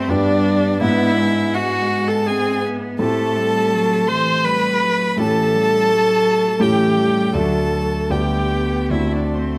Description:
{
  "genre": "classical, slow romantic movement for piano quartet",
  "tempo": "83 BPM",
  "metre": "3/4",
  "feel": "uneven beats, rubato",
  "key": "unclear",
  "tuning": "A4 = 440 Hz",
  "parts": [
    { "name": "rich violin", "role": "melody", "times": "0.0-9.6 s", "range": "C5 to C6", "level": "-28 LUFS", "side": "equal", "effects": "none" },
    { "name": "rich cello", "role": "second line", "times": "0.0-9.6 s", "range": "E3 to C4", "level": "-26 LUFS", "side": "equal", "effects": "none" },
    { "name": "rich viola", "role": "accompaniment", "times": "0.0-9.6 s", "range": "C4 to C5", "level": "-21 LUFS", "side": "equal", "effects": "none" },
    { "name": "warm concert grand piano", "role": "accompaniment", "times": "0.0-9.6 s", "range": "D2 to G4", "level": "-23 LUFS", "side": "equal", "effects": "none" }
  ],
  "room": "moderate recital hall reverb, RT60 1.5 s",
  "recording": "close, detailed microphones",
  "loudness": "-18 LUFS",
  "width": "mono",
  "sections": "0.0-9.6 A section",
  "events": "none",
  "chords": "0.0 G; 0.8 E7/G#; 3.0 Am7; 5.2 A7; 7.4 D; 8.1 G/D; 8.9 D7"
}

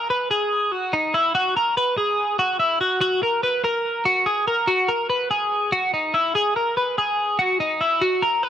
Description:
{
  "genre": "indie pop",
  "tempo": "144 BPM",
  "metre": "4/4",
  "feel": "straight",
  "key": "unclear",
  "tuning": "A4 = 440 Hz",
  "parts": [
    { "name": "twelve-string electric guitar", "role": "solo", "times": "0.0-8.5 s", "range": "D#4 to B4", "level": "-19 LUFS", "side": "equal", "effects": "none" }
  ],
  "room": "light reverb, digital ambience",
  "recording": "none",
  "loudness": "-19 LUFS",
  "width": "side -10 dB against mid",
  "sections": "0.0-8.5 A section",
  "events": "none",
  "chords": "none"
}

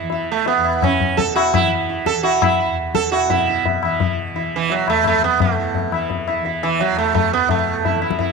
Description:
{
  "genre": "indian classical, Hindustani",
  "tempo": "170 BPM",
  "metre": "3/4",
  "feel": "straight",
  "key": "unclear",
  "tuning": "A4 = 440 Hz",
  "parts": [
    { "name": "sitar", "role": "melody", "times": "0.0-8.3 s", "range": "E3 to A4", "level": "-18 LUFS", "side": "right 9 dB", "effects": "none" },
    { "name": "tanpura", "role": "drone", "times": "0.0-8.3 s", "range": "E2 to E3", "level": "-29 LUFS", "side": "left 2 dB", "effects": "none" },
    { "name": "tabla", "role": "percussion", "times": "0.1-8.3 s", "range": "none", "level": "-20 LUFS", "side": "left 10 dB", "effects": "none" }
  ],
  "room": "moderate echo chamber reverb, RT60 1.5 s, small room ambience",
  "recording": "1960s-style stereo with parts hard left and right",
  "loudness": "-16 LUFS",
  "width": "side -4 dB against mid",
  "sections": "0.0-3.3 A section; 3.3-8.3 B section",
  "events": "speeding up 0.0-8.3",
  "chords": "none"
}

